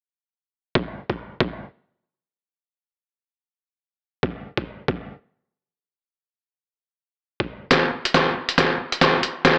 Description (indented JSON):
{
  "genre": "dubstep",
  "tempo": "138 BPM",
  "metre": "4/4",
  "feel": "swing 58% on 16ths, half-time",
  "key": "none",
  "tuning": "none",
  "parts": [
    { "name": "electronic kick drum", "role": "drums", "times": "0.8-1.5, 4.2-9.5 s", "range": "none", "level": "-28 LUFS", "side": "equal", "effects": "studio reverb" },
    { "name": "trip hop sampler-style drum kit", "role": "drums", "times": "7.7-9.5 s", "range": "hi-hat, snare drum", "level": "-20 LUFS", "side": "equal", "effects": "low-pass filter on snare, studio reverb, low-pass filter on hats" }
  ],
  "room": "moderate spring reverb, RT60 1.1 s",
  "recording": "AM radio sound",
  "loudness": "-23 LUFS",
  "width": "mono",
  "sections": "0.0-7.7 A section; 7.7-9.6 B section",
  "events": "build-up 7.7-9.6; drum fill 7.7-9.6",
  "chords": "none",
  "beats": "0.32 | 0.75 1.19 1.62 2.06 | 2.49 2.93 3.36 3.80 | 4.23 4.67 5.10 5.54 | 5.97 6.41 6.84 7.27 | 7.71 8.14 8.58 9.01 | 9.45"
}